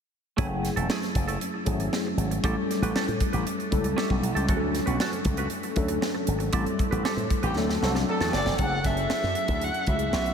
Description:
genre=polished 1980s jazz-funk pop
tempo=117 BPM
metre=4/4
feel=straight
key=F# minor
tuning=A4 = 440 Hz
part: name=tine electric piano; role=accompaniment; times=0.4-10.3 s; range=F#3 to A4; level=-29 LUFS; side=left 2 dB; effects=overdrive, fast stereo tremolo, ensemble chorus
part: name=semi-hollow electric guitar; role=riff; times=0.4-8.5 s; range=A3 to B4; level=-33 LUFS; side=right 3 dB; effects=wide subtle chorus
part: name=slap bass with an envelope filter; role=bass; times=0.4-10.3 s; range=E1 to A2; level=-28 LUFS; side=equal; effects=none
part: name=crisp fusion drum kit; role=drums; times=0.4-10.3 s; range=hi-hat, kick drum, snare drum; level=-30 LUFS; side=right 1 dB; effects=none
part: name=warm horn section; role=second line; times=7.4-8.4 s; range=D3 to A4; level=-35 LUFS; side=equal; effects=none
part: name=warm erhu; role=melody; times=8.3-10.3 s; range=D5 to F#5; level=-28 LUFS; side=right 1 dB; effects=none
room=moderate huge ambient reverb, RT60 8.1 s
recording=dreamy mix soaked in reverb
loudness=-24 LUFS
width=side -7 dB against mid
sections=0.4-8.6 A section; 8.6-10.3 B section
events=band accent 6.5-8.6; drum fill 7.6-8.6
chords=0.4 F#m9; 2.4 A7; 4.5 Dmaj7; 6.5 Am7; 7.6 D7; 8.6 F#m9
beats=| 0.38 0.89 1.41 1.92 | 2.43 2.94 3.46 3.97 | 4.48 5.00 5.51 6.02 | 6.54 7.05 7.56 8.07 | 8.59 9.10 9.62 10.13

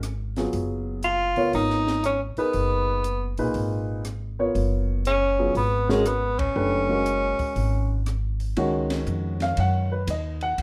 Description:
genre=modal jazz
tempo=119 BPM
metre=4/4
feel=swing 67% on 8ths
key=Db mixolydian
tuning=A4 = 440 Hz
part: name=upright bass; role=bass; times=0.0-10.6 s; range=Gb1 to Gb2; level=-29 LUFS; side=equal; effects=none
part: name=compact cocktail drum kit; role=drums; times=0.0-10.6 s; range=hi-hat, kick drum, ride cymbal, rim click, snare drum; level=-37 LUFS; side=equal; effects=none
part: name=warm baby grand piano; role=accompaniment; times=0.4-10.6 s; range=Bb2 to Gb5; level=-29 LUFS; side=equal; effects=none
part: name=mellow tenor saxophone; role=melody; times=1.0-8.1 s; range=Ab3 to F4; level=-26 LUFS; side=equal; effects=none
room=moderate studio reverb, RT60 0.8 s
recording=none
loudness=-24 LUFS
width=mono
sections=0.0-8.6 A section; 8.6-10.6 B section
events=band accent 6.3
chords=0.0 Db9sus4; 8.6 Dbsus4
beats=0.03 | 0.53 1.04 1.54 2.04 | 2.54 3.04 3.55 4.05 | 4.55 5.05 5.56 6.06 | 6.56 7.06 7.57 8.07 | 8.57 9.07 9.58 10.08 | 10.58

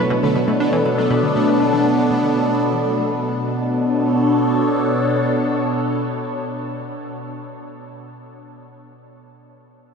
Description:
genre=ambient, sequencer-driven space music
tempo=120 BPM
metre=4/4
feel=straight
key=B minor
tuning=A4 = 440 Hz
part: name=phased analog pad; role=sustained chords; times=0.0-7.9 s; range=B2 to C#5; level=-18 LUFS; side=equal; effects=phaser, chorus
part: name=concert harp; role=arpeggios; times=0.0-6.2 s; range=B3 to B4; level=-28 LUFS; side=right 2 dB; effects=none
part: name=analog pluck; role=riff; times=0.0-3.3 s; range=B2 to D4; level=-25 LUFS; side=equal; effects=chorus, ping-pong delay
part: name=pulsing gated texture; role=texture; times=0.0-3.1 s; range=A3 to A4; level=-27 LUFS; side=right 1 dB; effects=chorus, built-in reverb
room=wet huge ambient reverb, RT60 7.8 s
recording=none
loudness=-16 LUFS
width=side -5 dB against mid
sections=0.0-3.1 A section; 3.1-7.1 B section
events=fade-out on synth arpeggio sound 0.0-3.1; fade-out on harp 0.0-3.1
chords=0.0 Bm7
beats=0.10 0.60 | 1.10 1.60 2.10 2.60 | 3.10 3.60 4.10 4.60 | 5.10 5.60 6.10 6.60

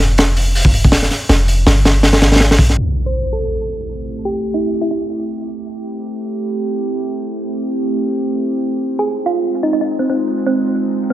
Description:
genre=drum and bass, jungle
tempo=162 BPM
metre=4/4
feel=swing 54% on 16ths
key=unclear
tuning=A4 = 440 Hz
part: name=warm 808-style bass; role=bass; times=0.0-2.8 s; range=F1 to Bb1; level=-14 LUFS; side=equal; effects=none
part: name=crunchy breakbeat drum kit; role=drums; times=0.0-2.8 s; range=hi-hat, kick drum, snare drum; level=-12 LUFS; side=equal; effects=none
part: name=warbly tape-like pad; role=sustained chords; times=3.7-11.1 s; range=Ab3 to G4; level=-20 LUFS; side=right 1 dB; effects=chorus, built-in reverb, phaser
part: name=impact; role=sound effects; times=2.8-4.3 s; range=none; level=-22 LUFS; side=equal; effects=none
part: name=thumb-piano-like synth pluck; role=melody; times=3.1-5.0, 9.0-11.1 s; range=C4 to C5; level=-19 LUFS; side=right 1 dB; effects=chorus, vintage 12-bit sampler grit, dub echo
room=light reverb, studio reverb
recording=low-pass filter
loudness=-14 LUFS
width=side -14 dB against mid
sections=0.0-2.8 A section; 2.8-11.1 B section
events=drop 0.0-2.8; impact 2.8-4.3; filter sweep on ambient pad 2.8-11.1; filter sweep 2.8-11.1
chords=0.0 Fm; 2.8 Am7; 8.7 Fm7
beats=0.18 0.56 0.93 | 1.29 1.67 2.04 2.41 | 2.78 3.15 3.52 3.89 | 4.26 4.63 5.00 5.37 | 5.74 6.11 6.48 6.85 | 7.22 7.59 7.96 8.33 | 8.70 9.07 9.44 9.81 | 10.18 10.55 10.93

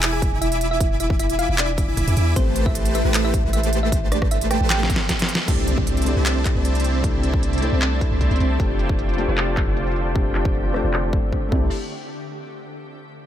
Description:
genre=future bass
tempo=154 BPM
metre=4/4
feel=half-time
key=C major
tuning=A4 = 440 Hz
part: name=thumb-piano-like synth pluck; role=melody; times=0.0-5.4 s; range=C4 to G#5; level=-27 LUFS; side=equal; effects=chorus, phaser, sidechain pumping, digital delay
part: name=dense compressed supersaw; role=riff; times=0.0-11.7 s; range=A3 to D6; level=-26 LUFS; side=right 1 dB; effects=sidechain pumping, low-pass filter, ping-pong delay
part: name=long sustained 808-style bass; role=bass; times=0.0-11.7 s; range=E1 to E2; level=-22 LUFS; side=equal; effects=sidechain pumping
part: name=dubstep drum kit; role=drums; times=0.0-11.6 s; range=crash cymbal, handclaps, hi-hat, rim click, snare drum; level=-26 LUFS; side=equal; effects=low-pass filter on hats, low-pass filter on snare, low-pass filter on cymbals
part: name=electronic kick drum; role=drums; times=0.2-11.6 s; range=none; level=-22 LUFS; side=equal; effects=none
part: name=felt-muted upright piano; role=accompaniment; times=5.5-11.7 s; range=A3 to C5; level=-28 LUFS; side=left 4 dB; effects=sidechain pumping, ping-pong delay
part: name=shimmering ambient pad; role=sustained chords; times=6.7-11.7 s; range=C3 to G4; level=-33 LUFS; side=equal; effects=chorus, built-in reverb, sidechain pumping
part: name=impact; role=sound effects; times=5.5-7.0 s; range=none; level=-32 LUFS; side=equal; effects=none
room=little or no reverb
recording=none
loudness=-18 LUFS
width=side -11 dB against mid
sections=0.0-5.5 A section; 5.5-11.7 B section; 11.7-13.3 C section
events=drop 0.0-5.5; drum fill 4.7-5.5; band accent 5.4; impact 5.5-7.0; filter sweep on drum 5.5-11.7; filter sweep on 808-style bass 5.5-11.7; filter sweep on supersaw synth 5.5-11.7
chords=0.0 E7; 2.4 Am9; 5.5 C6; 8.6 F69; 11.5 C6; 11.7 N.C.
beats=0.03 0.42 | 0.81 1.20 1.58 1.98 | 2.36 2.75 3.14 3.53 | 3.92 4.31 4.70 5.09 | 5.48 5.87 6.26 6.65 | 7.04 7.43 7.82 8.21 | 8.60 8.99 9.38 9.77 | 10.16 10.55 10.94 11.32 | 11.71

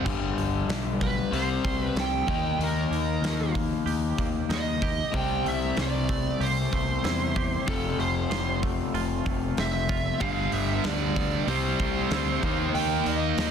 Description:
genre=quiet-loud alternative rock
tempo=94 BPM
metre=4/4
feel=straight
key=unclear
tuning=A4 = 440 Hz
part: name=crunchy overdriven guitar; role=riff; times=0.0-13.5 s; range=F2 to Eb4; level=-29 LUFS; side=left 9 dB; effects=none
part: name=scooped high-gain guitar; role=riff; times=0.0, 10.2-13.5 s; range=G2 to Eb4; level=-30 LUFS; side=right 15 dB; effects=distortion
part: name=twangy electric guitar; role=arpeggios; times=0.1-13.5 s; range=F2 to G4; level=-36 LUFS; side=right 10 dB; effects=tremolo, analog delay
part: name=growling picked electric bass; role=bass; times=0.1-13.5 s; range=F1 to E2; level=-31 LUFS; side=right 1 dB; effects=overdrive
part: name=big rock drum kit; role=drums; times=0.1-13.5 s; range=crash cymbal, hi-hat, kick drum, snare drum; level=-31 LUFS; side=equal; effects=none
part: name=smooth overdriven lead guitar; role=melody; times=1.0-13.5 s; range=A4 to G5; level=-30 LUFS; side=right 5 dB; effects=none
room=light reverb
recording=dense, heavily limited modern master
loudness=-24 LUFS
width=side -7 dB against mid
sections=0.1-13.5 A section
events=lead electric guitar solo 0.1-13.5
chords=0.1 G7; 1.3 C5; 2.3 Ebadd9; 5.1 C6; 7.7 F; 10.2 G7; 11.5 C6; 12.4 Eb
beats=| 0.06 0.69 1.33 1.96 | 2.60 3.23 3.87 4.50 | 5.14 5.77 6.41 7.04 | 7.68 8.31 8.95 9.58 | 10.22 10.85 11.49 12.12 | 12.76 13.39

